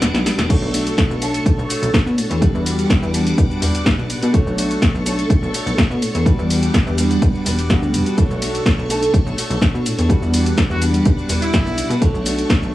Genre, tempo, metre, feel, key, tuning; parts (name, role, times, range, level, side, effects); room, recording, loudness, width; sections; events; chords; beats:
filtered disco house; 125 BPM; 4/4; straight; B minor; A4 = 440 Hz
dark grand piano; accompaniment; 0.0-12.7 s; G3 to C#5; -24 LUFS; right 1 dB; phaser, sidechain pumping, low-pass filter, cassette tape
phased string machine; sustained chords; 0.0-12.7 s; G3 to D6; -26 LUFS; right 1 dB; ensemble chorus, phaser, sidechain pumping, low-pass filter, cassette tape
direct-recorded clean electric guitar; riff; 0.0-12.7 s; G3 to C#5; -27 LUFS; left 3 dB; sidechain pumping, low-pass filter, cassette tape
plucky analog bass; bass; 0.0-12.7 s; E1 to B2; -21 LUFS; equal; transformer saturation, sidechain pumping, low-pass filter
punchy analog drum machine; drums; 0.0-12.7 s; crash cymbal, hi-hat, ride cymbal, shaker, snare drum; -22 LUFS; equal; cassette tape
electronic kick drum; drums; 0.5-12.6 s; -17 LUFS; equal; cassette tape
brilliant horn section; melody; 10.7-11.9 s; E4 to F#4; -25 LUFS; equal; sidechain pumping, low-pass filter, cassette tape, analog delay
light reverb; home recording on cassette, small room ambience; -15 LUFS; side -15 dB against mid
0.5-12.7 A section
drum fill 0.0-0.5; break 0.0-0.5; drop 0.5-12.7
0.5 Bm9; 2.4 Em9; 4.3 Bm9; 6.3 Em9; 8.2 Bm9; 10.1 Em9; 12.0 Bm9
0.02 | 0.50 0.98 1.46 1.94 | 2.42 2.90 3.38 3.86 | 4.34 4.82 5.30 5.78 | 6.26 6.74 7.22 7.70 | 8.18 8.66 9.14 9.62 | 10.10 10.58 11.06 11.54 | 12.02 12.50